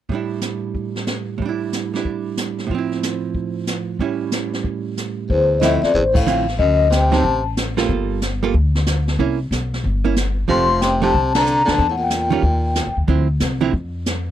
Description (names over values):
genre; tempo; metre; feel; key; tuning
jazz, small-group swing and bop; 185 BPM; 4/4; swing 64% on 8ths; D minor; A4 = 440 Hz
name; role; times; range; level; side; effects
archtop guitar, miked and amplified; accompaniment; 0.1-13.7 s; A2 to A4; -21 LUFS; right 8 dB; none
jazz brush drum kit; drums; 0.1-14.3 s; brushed snare drum, hi-hat, kick drum, ride cymbal, snare drum; -23 LUFS; equal; none
vibraphone with soft mallets; melody; 5.3-7.4, 10.5-12.9 s; C5 to C6; -18 LUFS; left 4 dB; none
clear baritone saxophone; second line; 5.3-7.4, 10.5-12.9 s; E2 to F3; -22 LUFS; right 2 dB; none
upright bass; bass; 5.3-14.3 s; F1 to F2; -20 LUFS; left 1 dB; none
room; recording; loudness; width
little or no reverb; none; -17 LUFS; side -11 dB against mid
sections
0.1-5.3 A section; 5.3-14.3 B section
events
band accent 6.1, 11.3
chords
0.1 A7sus4; 2.7 Fmaj7/A; 4.0 A7; 5.3 Dm9; 6.6 D7b9; 7.9 Gm9; 9.2 C7b9; 10.5 F69; 11.8 Edim; 12.4 Ebadd9; 13.1 Dm9